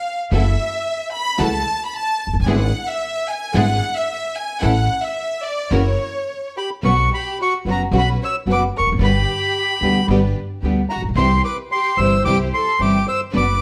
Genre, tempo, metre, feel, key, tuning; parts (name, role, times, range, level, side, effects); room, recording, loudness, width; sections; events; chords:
tango; 111 BPM; 4/4; rubato; A4 = 439 Hz
warm studio violin section; second line; 0.0-13.6 s; F#4 to B5; -26 LUFS; equal
nylon-string guitar; accompaniment; 0.3-13.4 s; B2 to G#4; -23 LUFS; equal
clear symphonic string section; stabs; 0.3-13.6 s; C#4 to C5; -31 LUFS; equal
upright bass; bass; 0.3-13.6 s; E1 to D2; -22 LUFS; equal
bandoneon; melody; 6.6-13.6 s; A#5 to E6; -22 LUFS; equal
moderate large studio reverb, RT60 1.1 s; -19 LUFS; mono
0.0-6.8 A section; 6.8-13.6 B section
violin section solo 0.0-6.8
0.3 F#m7; 2.5 E7/G#; 4.6 A; 5.7 F#7; 6.8 Bsus2; 9.0 G; 11.2 C